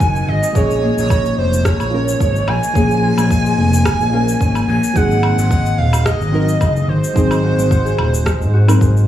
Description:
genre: organic downtempo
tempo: 109 BPM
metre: 4/4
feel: swing 54% on 16ths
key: Bb minor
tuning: A4 = 440 Hz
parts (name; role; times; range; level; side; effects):
- breathy flute-like synth lead; melody; 0.0-9.1 s; C5 to Ab5; -20 LUFS; right 2 dB; chorus, phaser, digital delay
- deep mellow chord stab; accompaniment; 0.0-9.1 s; F3 to Bb4; -22 LUFS; right 3 dB; chorus, sidechain pumping, tape echo
- Celtic harp; arpeggios; 0.0-9.1 s; Ab3 to Eb5; -21 LUFS; left 3 dB; tape echo
- smooth gliding synth bass; bass; 0.0-9.1 s; Eb1 to Ab2; -16 LUFS; equal; sidechain pumping
- electronic cabasa, woodblock and rim click; drums; 0.0-9.1 s; none; -25 LUFS; left 1 dB; overdrive
- electronic kick drum; drums; 0.0-8.9 s; none; -18 LUFS; equal; overdrive
room: light reverb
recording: small room reverb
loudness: -13 LUFS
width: side -12 dB against mid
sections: 0.0-9.1 A section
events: none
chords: 0.0 Ab7; 0.6 Bbm7; 5.0 Ab7

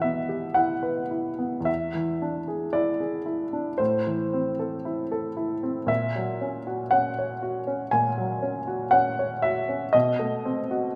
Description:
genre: classical, romantic nocturne for solo piano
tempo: 52-61 BPM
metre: 4/4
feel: rubato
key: unclear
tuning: A4 = 440 Hz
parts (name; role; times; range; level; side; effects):
- warm upright piano; solo; 0.0-11.0 s; E2 to G#5; -26 LUFS; equal; none
room: moderate recital hall reverb, RT60 1.7 s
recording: none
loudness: -26 LUFS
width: mono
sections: 0.0-11.0 A section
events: none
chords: 0.0 Em; 1.7 E7; 3.8 Am; 5.9 F#7/A#; 9.9 B7b9

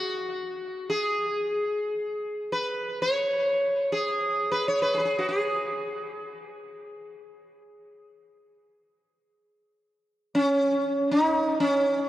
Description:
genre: world meditative, free-time meditation music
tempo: free time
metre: none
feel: none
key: G# minor pentatonic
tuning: A4 = 442 Hz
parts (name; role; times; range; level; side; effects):
- sitar; solo; 0.0-12.1 s; C#4 to C#5; -24 LUFS; equal; tape echo
room: wet cathedral reverb, RT60 3.9 s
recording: worn, warbling old tape, cassette tape, warbly pitch drift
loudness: -24 LUFS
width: side -14 dB against mid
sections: 0.0-12.1 A section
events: none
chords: none

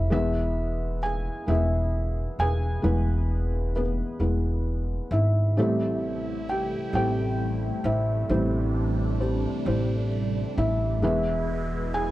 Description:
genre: acoustic folk-pop ballad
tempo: 44 BPM (dotted quarters)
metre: 6/8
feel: straight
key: A minor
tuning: A4 = 435 Hz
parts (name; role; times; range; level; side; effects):
- felt-muted upright piano; melody; 0.0-12.1 s; A1 to G#5; -27 LUFS; equal; none
- upright bass; bass; 0.0-12.1 s; E1 to A1; -26 LUFS; equal; none
- phased analog pad; sustained chords; 5.6-12.1 s; B2 to E4; -33 LUFS; right 1 dB; phaser, chorus
room: little or no reverb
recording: dark, warm production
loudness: -23 LUFS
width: side -16 dB against mid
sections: 0.0-12.1 A section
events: none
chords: 0.1 E; 5.6 Am7; 11.0 E

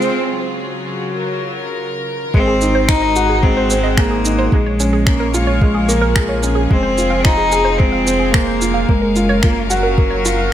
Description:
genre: piano and strings electronica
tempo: 110 BPM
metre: 4/4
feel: straight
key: unclear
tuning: A4 = 441 Hz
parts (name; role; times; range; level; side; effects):
- rich cello; melody; 0.0-10.5 s; Gb3 to Eb4; -18 LUFS; equal; none
- clear studio string section; sustained chords; 0.0-10.5 s; C3 to F5; -24 LUFS; left 2 dB; sidechain pumping
- clear upright piano; riff; 0.0-10.5 s; Ab3 to C5; -20 LUFS; equal; none
- warm sub bass; bass; 0.0-10.5 s; F1 to Bb1; -20 LUFS; equal; sidechain pumping, high-pass filter
- electronic shaker and finger snaps; drums; 0.0-10.4 s; none; -20 LUFS; right 1 dB; none
- electronic kick drum; drums; 2.3-10.1 s; none; -15 LUFS; equal; none
- analog pluck; arpeggios; 2.5-10.4 s; Ab4 to F5; -25 LUFS; right 3 dB; chorus, sidechain pumping, tape echo
room: light reverb, studio reverb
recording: none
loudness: -13 LUFS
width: side -11 dB against mid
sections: 0.0-2.3 A section; 2.3-10.5 B section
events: build-up 0.0-2.3; break 0.2-2.3; drop 2.3-10.5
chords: 0.2 Gbmaj7; 2.3 Ab7; 4.5 Bbm7; 6.7 Fm; 8.9 Gbmaj7

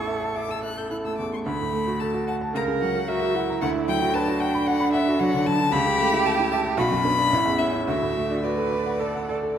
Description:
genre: quick classical-period movement for piano trio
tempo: 112 BPM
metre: 4/4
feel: uneven beats, rubato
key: D major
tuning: A4 = 440 Hz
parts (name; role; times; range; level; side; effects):
- clear violin; melody; 0.0-9.6 s; D5 to G6; -26 LUFS; left 5 dB; none
- rich cello; second line; 0.0-9.4 s; D4 to B4; -26 LUFS; right 4 dB; none
- clear baby grand piano; accompaniment; 0.0-9.6 s; A1 to B5; -25 LUFS; right 1 dB; none
room: wet recital hall reverb, RT60 1.6 s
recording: none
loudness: -21 LUFS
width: side -9 dB against mid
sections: 0.0-9.6 A section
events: none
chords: 0.0 A; 1.5 D; 2.5 F#7/C#; 3.6 Bm/D; 5.7 A/C#; 6.8 Bm; 7.3 A; 7.9 D

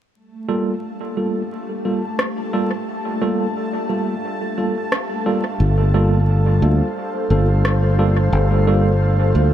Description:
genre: ambient dub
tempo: 88 BPM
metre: 4/4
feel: swing 59% on 16ths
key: G minor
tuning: A4 = 441 Hz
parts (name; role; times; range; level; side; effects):
- airy breathy pad; sustained chords; 0.1-9.5 s; G3 to F5; -26 LUFS; equal; chorus
- bubbling stepped-filter texture; texture; 0.3-9.5 s; A3 to A5; -29 LUFS; left 2 dB; chorus, built-in reverb
- tine electric piano; stabs; 0.5-9.5 s; G3 to A4; -22 LUFS; right 2 dB; fast stereo tremolo, low-pass filter, dub echo
- electronic rim click; drums; 2.2-7.8 s; none; -26 LUFS; equal; overdrive, dub echo
- fingered electric bass; bass; 5.6-9.5 s; G1 to D2; -15 LUFS; equal; none
room: light reverb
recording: vinyl crackle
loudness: -17 LUFS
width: side -11 dB against mid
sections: 0.1-9.5 A section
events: fade-in on analog synth pad 0.1-9.5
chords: 0.1 Gm9

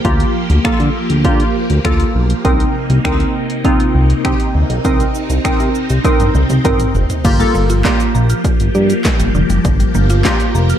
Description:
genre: dance-pop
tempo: 100 BPM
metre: 4/4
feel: straight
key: G minor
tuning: A4 = 439 Hz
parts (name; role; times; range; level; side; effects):
- glassy wavetable pluck; accompaniment; 0.0-10.7 s; Bb3 to Bb4; -18 LUFS; right 1 dB; chorus, sidechain pumping
- phased string machine; sustained chords; 0.0-10.8 s; C3 to G4; -20 LUFS; equal; ensemble chorus, phaser, sidechain pumping
- chorused synth bass; bass; 0.0-10.7 s; F1 to D3; -14 LUFS; equal; sidechain pumping
- punchy analog drum machine; drums; 0.0-10.8 s; crash cymbal, finger snaps, handclaps, hi-hat, kick drum, shaker, snare drum, toms; -16 LUFS; equal; none
- mallet-like synth pluck; arpeggios; 7.2-10.8 s; D3 to F6; -24 LUFS; right 2 dB; chorus, sidechain pumping, ping-pong delay
room: light reverb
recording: dark, warm production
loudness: -12 LUFS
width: side -10 dB against mid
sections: 0.0-7.2 A section; 7.2-10.8 B section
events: drum fill 6.0-7.2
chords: 0.0 Gm7; 2.4 Cm7; 7.2 Gm7

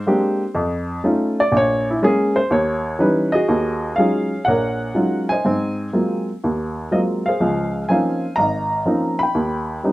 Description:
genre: solo jazz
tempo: 123 BPM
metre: 4/4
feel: swing 68% on 8ths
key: Eb minor from 3.5 s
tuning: A4 = 439 Hz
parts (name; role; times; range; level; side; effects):
- warm upright piano; solo; 0.0-9.9 s; Ab1 to Cb6; -17 LUFS; equal; none
room: moderate club reverb, RT60 0.5 s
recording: none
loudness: -17 LUFS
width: side -18 dB against mid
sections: 0.0-3.5 A section; 3.5-9.9 B section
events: upright piano solo 0.0-3.5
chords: 0.0 G#maj9#11; 0.6 F7b13; 1.5 A#m9b5; 2.5 D#7b9; 3.5 Ebm11; 5.4 Ab13; 7.4 Dbmaj13; 9.4 Eb7b13

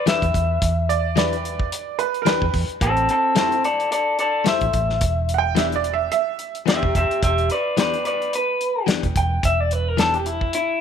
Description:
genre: straight-eighth soul blues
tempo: 109 BPM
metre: 4/4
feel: swing 56% on 16ths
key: E minor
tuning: A4 = 442 Hz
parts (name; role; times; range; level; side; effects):
- electric guitar through a small old amp; melody; 0.0-10.8 s; C4 to G5; -21 LUFS; left 1 dB; none
- direct-recorded clean electric guitar; stabs; 0.1-10.2 s; E3 to C5; -28 LUFS; left 11 dB; spring reverb
- warm soul drum kit; drums; 0.1-10.7 s; hi-hat, kick drum, snare drum; -23 LUFS; left 1 dB; none
- vintage muted fingered electric bass; bass; 0.2-10.5 s; E1 to E2; -23 LUFS; right 2 dB; none
- bright upright piano; second line; 0.9-6.5 s; A#4 to G5; -22 LUFS; right 13 dB; none
room: light reverb, small room ambience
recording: 1960s-style stereo with parts hard left and right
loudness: -18 LUFS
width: side -8 dB against mid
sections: 0.0-10.8 A section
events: none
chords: 0.0 Em7; 2.8 Am7; 5.0 Em7

